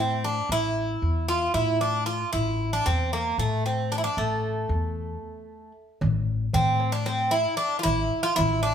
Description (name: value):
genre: Turkish makam ensemble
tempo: 228 BPM (eighths)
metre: 7/8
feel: straight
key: A makam kurdi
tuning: A4 = 438 Hz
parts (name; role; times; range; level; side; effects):
- Greek bouzouki; melody; 0.0-8.7 s; A3 to F4; -25 LUFS; right 2 dB; none
- upright bass; bass; 0.0-8.7 s; A1 to A2; -27 LUFS; left 2 dB; none
- darbuka; percussion; 6.0-8.7 s; none; -29 LUFS; right 1 dB; none
room: moderate large studio reverb, RT60 1.1 s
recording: band playing live in one room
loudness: -23 LUFS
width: side -8 dB against mid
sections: 0.0-6.0 A section; 6.0-8.7 B section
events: break 5.2-6.0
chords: none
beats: 0.23 | 0.49 0.75 1.01 1.28 1.54 1.80 2.07 | 2.33 2.59 2.85 3.12 3.38 3.64 3.91 | 4.17 4.43 4.70 4.96 5.22 5.49 5.75 | 6.01 6.28 6.54 6.80 7.06 7.33 7.59 | 7.85 8.12 8.38 8.64